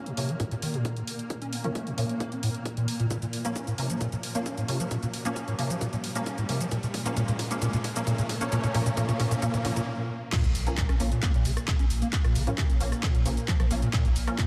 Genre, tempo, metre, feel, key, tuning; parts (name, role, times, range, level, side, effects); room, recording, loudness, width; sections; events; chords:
driving peak-time techno; 133 BPM; 4/4; straight; Bb harmonic minor; A4 = 440 Hz
overdriven acid bass; riff; 0.0-14.4 s; Bb1 to Db4; -32 LUFS; equal; ensemble chorus, sidechain pumping, delay
swarming drone; drone; 0.0-14.5 s; Bb2 to Bb3; -40 LUFS; equal; built-in reverb, analog chorus, sidechain pumping
riser and impact; sound effects; 1.0-12.1 s; -41 LUFS; equal
techno drum kit; drums; 0.1-14.5 s; crash cymbal, handclaps, hi-hat, rim click, shaker; -38 LUFS; equal; sidechain pumping on hats, sidechain pumping on perc, sidechain pumping on cymbals
filtered dub chord stab; stabs; 0.2-14.3 s; F3 to Db4; -37 LUFS; equal; ensemble chorus, sidechain pumping, delay
electronic kick drum; drums; 0.4-14.5 s; -32 LUFS; equal; high-pass filter on kick, high-pass filter on room
saturated sub bass; bass; 10.4-14.3 s; Bb1; -32 LUFS; equal; overdrive, sidechain pumping, low-pass filter
wet lush hall reverb, RT60 1.9 s; dreamy mix soaked in reverb; -28 LUFS; mono
0.0-10.3 A section; 10.3-14.5 B section
build-up 0.0-10.3; filter sweep on acid bass 0.0-10.3; riser 1.0-9.9; drum fill 3.1-9.9; stop 9.9-10.3; drop 10.3-14.5; impact 10.3-12.1
0.0 Bbm